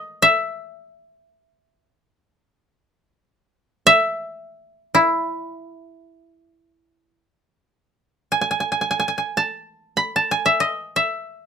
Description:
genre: japanese traditional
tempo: free time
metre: none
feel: none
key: E ryukyu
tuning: A4 = 441 Hz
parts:
  - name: koto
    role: solo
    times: 0.0-11.5 s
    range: E4 to B5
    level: -17 LUFS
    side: equal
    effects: none
room: light reverb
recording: close, detailed microphones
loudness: -18 LUFS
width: side -7 dB against mid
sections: 0.0-7.2 A section; 7.2-11.5 A section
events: none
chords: none

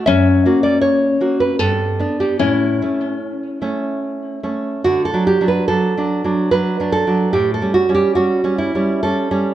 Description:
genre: romantic duo for nylon-string guitar and classical guitar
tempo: 65-80 BPM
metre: 3/4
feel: rubato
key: D major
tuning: A4 = 440 Hz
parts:
  - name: nylon-string guitar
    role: melody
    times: 0.0-4.4 s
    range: B3 to C#4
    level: -18 LUFS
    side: left 5 dB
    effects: tape echo
  - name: nylon-string guitar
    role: accompaniment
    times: 0.0-9.5 s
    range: F#2 to E5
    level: -16 LUFS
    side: right 2 dB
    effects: none
room: wet recital hall reverb, RT60 1.8 s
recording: dark, warm production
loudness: -15 LUFS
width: side -12 dB against mid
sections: 0.0-4.9 A section; 4.9-9.5 B section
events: none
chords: 0.1 F#; 1.6 G; 2.4 A; 4.9 D; 7.3 A7

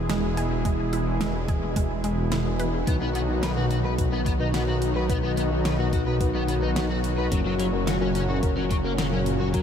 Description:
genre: synthwave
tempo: 108 BPM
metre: 4/4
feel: straight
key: unclear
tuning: A4 = 437 Hz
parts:
  - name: brassy analog pad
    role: sustained chords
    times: 0.0-9.6 s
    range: A#2 to G#4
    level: -28 LUFS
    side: right 1 dB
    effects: chorus, sidechain pumping
  - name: wide detuned saw bass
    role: bass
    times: 0.0-9.6 s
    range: E1 to B1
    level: -28 LUFS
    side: equal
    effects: chorus, sidechain pumping
  - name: analog pluck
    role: arpeggios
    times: 0.1-2.7 s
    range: G#3 to B4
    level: -34 LUFS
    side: right 2 dB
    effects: chorus, cassette tape, ping-pong delay
  - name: pop drum kit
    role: drums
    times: 0.1-9.6 s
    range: hi-hat, snare drum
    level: -34 LUFS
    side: left 1 dB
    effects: none
  - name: electronic kick drum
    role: drums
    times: 0.7-9.6 s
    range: none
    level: -26 LUFS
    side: equal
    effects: none
  - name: crunchy overdriven guitar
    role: riff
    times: 2.9-9.6 s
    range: F#3 to B4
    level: -33 LUFS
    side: left 3 dB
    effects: ensemble chorus, ping-pong delay
  - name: mellow FM electric piano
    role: stabs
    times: 2.9-9.6 s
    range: B2 to B4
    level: -29 LUFS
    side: left 3 dB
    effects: chorus, ping-pong delay
room: moderate huge ambient reverb, RT60 7.9 s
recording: dreamy mix soaked in reverb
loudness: -22 LUFS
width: side -8 dB against mid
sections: 0.0-9.6 A section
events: none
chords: 0.0 E; 2.9 B; 7.3 F#

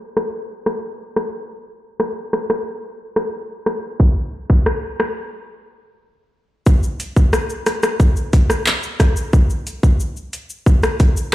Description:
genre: dancehall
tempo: 90 BPM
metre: 4/4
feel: straight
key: none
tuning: none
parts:
  - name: island pop drum kit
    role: drums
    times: 0.2-11.3 s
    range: handclaps, hi-hat, kick drum, rim click, shaker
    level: -16 LUFS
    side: equal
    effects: overdrive
room: light reverb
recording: played on a big sound system in a bare room, large studio reverb, low-pass filter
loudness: -16 LUFS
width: side -15 dB against mid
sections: 0.0-6.7 A section; 6.7-11.3 B section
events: filter sweep 0.0-6.7; break 5.3-6.7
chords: none

